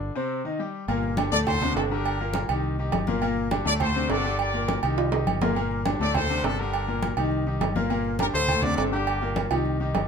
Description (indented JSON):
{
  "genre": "latin, salsa",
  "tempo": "205 BPM",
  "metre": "4/4",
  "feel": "straight",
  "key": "G harmonic minor",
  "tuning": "A4 = 439 Hz",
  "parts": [
    { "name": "bright grand piano", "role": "accompaniment", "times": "0.0-10.0 s", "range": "A2 to G5", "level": "-28 LUFS", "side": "left 3 dB", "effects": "none" },
    { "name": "fingered electric bass", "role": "bass", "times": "0.0-10.1 s", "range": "G1 to D2", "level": "-29 LUFS", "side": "equal", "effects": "none" },
    { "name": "agogo bells and timbales", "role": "percussion", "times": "0.9-10.1 s", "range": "none", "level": "-29 LUFS", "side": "right 10 dB", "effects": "none" },
    { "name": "congas", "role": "percussion", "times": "0.9-10.1 s", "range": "none", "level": "-32 LUFS", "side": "left 2 dB", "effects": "none" },
    { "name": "bright trumpet section", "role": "melody", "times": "1.3-9.5 s", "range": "Bb3 to D5", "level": "-27 LUFS", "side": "left 1 dB", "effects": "none" }
  ],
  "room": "light reverb",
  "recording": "minimal, uncompressed stereo recording",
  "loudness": "-23 LUFS",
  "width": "side -6 dB against mid",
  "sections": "0.9-10.1 A section",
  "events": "break 0.0-0.9; drum fill 5.0-5.6, 9.5-10.1",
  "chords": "0.3 Cm; 0.9 Gm; 1.5 D7; 2.1 Gm; 2.6 Cm; 3.2 Gm; 3.8 D7; 4.4 Gm; 5.0 Cm; 5.6 Gm; 6.1 D7; 6.7 Gm; 7.3 Cm; 7.9 Gm; 8.5 D7; 9.1 Gm",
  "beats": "0.01 0.30 0.59 | 0.89 1.18 1.47 1.76 | 2.06 2.35 2.64 2.93 | 3.22 3.52 3.81 4.10 | 4.39 4.69 4.98 5.27 | 5.56 5.86 6.15 6.44 | 6.73 7.03 7.32 7.61 | 7.90 8.20 8.49 8.78 | 9.07 9.37 9.66 9.95"
}